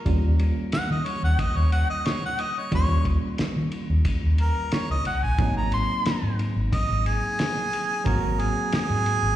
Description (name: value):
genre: straight-eighth soul blues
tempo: 90 BPM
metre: 4/4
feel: straight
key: unclear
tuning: A4 = 439 Hz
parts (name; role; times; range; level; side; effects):
- warm harmonica; melody; 0.0-9.4 s; Ab4 to C6; -27 LUFS; right 1 dB; overdrive, slapback echo, tape echo
- tine electric piano; accompaniment; 0.0-9.4 s; Gb3 to Gb4; -31 LUFS; right 2 dB; overdrive, medium stereo tremolo
- vintage muted fingered electric bass; bass; 0.1-9.3 s; Ab1 to Eb3; -23 LUFS; equal; none
- cloth-damped thuddy drum kit; drums; 0.1-9.2 s; kick drum, ride cymbal, snare drum; -29 LUFS; equal; none
room: little or no reverb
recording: live gig heard through the venue's PA, recital hall reverb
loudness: -22 LUFS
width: side -12 dB against mid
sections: 0.0-9.4 A section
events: harmonica solo 0.0-9.4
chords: 0.0 Eb9; 5.4 Ab9